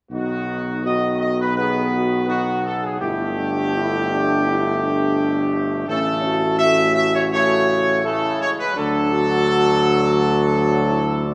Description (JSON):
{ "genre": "classical", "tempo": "84 BPM", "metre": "4/4", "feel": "straight", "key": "unclear", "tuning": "A4 = 440 Hz", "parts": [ { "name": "clear trumpet section", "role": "melody", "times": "0.1-11.3 s", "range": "F#4 to E5", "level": "-23 LUFS", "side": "equal", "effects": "none" }, { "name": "clear trombone section", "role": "sustained chords", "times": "0.1-11.3 s", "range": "B2 to B3", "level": "-28 LUFS", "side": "equal", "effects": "none" }, { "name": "mellow French horn section", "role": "sustained chords", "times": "0.1-11.3 s", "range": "C#4 to G#4", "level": "-26 LUFS", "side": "equal", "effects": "none" }, { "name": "warm tuba", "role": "bass", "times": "0.1-11.3 s", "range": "G1 to D2", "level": "-26 LUFS", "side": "equal", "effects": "none" } ], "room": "wet concert hall reverb, RT60 1.9 s", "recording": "none", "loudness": "-19 LUFS", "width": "mono", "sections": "0.1-11.3 A section", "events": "none", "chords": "0.1 B; 3.0 Gadd9; 5.9 A; 8.8 D" }